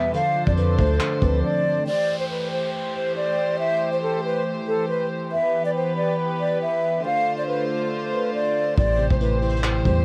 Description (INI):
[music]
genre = hip hop, trap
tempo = 139 BPM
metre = 4/4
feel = half-time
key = A minor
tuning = A4 = 441 Hz
[part]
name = breathy mellow silver concert flute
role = melody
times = 0.0-10.0 s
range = A4 to F5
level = -26 LUFS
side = equal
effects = cassette tape
[part]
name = tine electric piano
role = accompaniment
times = 0.0-1.9, 8.8-10.0 s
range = E2 to D4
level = -29 LUFS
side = equal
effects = cassette tape
[part]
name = dark symphonic string section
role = sustained chords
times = 0.0-10.0 s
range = D3 to C5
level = -28 LUFS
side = equal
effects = cassette tape
[part]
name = vintage brush drum kit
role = drums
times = 0.1-1.3, 8.8-10.0 s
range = handclaps, hi-hat, kick drum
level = -28 LUFS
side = equal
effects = cassette tape
[part]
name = long sustained 808-style bass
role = bass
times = 0.5-1.4, 8.8-10.0 s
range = A1 to F2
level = -24 LUFS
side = equal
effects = none
[part]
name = downlifter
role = sound effects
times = 1.9-5.3 s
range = none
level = -41 LUFS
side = equal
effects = none
[sound]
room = little or no reverb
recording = home recording on cassette, vinyl crackle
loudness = -23 LUFS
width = mono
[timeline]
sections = 0.0-1.9 A section; 1.9-10.0 B section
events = none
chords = 0.1 Dm7; 1.9 Am7; 5.3 Em; 7.0 Dm7; 8.8 Am7